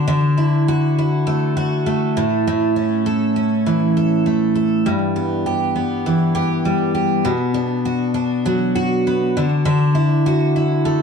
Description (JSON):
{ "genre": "pop", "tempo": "100 BPM", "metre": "4/4", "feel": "swing 55% on 16ths", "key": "D major", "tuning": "A4 = 441 Hz", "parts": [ { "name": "picked twelve-string acoustic guitar", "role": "solo", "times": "0.0-11.0 s", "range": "G2 to A4", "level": "-16 LUFS", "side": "equal", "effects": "slapback echo" } ], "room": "light reverb", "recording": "dark, warm production", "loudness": "-16 LUFS", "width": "side -6 dB against mid", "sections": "0.0-11.0 A section", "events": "none", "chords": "0.0 Dadd9; 2.2 A; 4.9 G6; 7.3 Bm; 9.3 Dadd9", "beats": "| 0.09 0.69 1.29 1.88 | 2.48 3.08 3.67 4.27 | 4.87 5.46 6.06 6.66 | 7.25 7.85 8.45 9.05 | 9.65 10.24 10.84" }